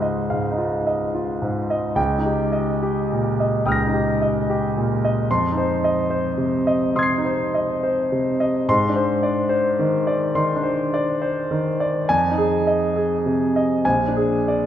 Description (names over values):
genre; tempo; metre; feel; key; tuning
classical, impressionist solo piano; 71 BPM; 4/4; uneven beats, rubato; unclear; A4 = 440 Hz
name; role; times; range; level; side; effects
clear concert grand piano; solo; 0.0-14.7 s; Bb1 to C7; -18 LUFS; equal; none
room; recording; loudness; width
wet scoring stage reverb, RT60 2.1 s; recorded in a church or concert hall; -18 LUFS; side -10 dB against mid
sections
0.0-14.7 A section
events
none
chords
0.0 Dbadd9; 2.0 Ebadd9/Db; 5.3 Fm7; 8.7 Ab; 12.1 Fm7; 13.8 Bb7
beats
0.31 1.16 | 1.98 2.82 3.66 4.47 | 5.29 6.11 6.96 7.83 | 8.69 9.51 10.34 11.21 | 12.09 12.96 13.84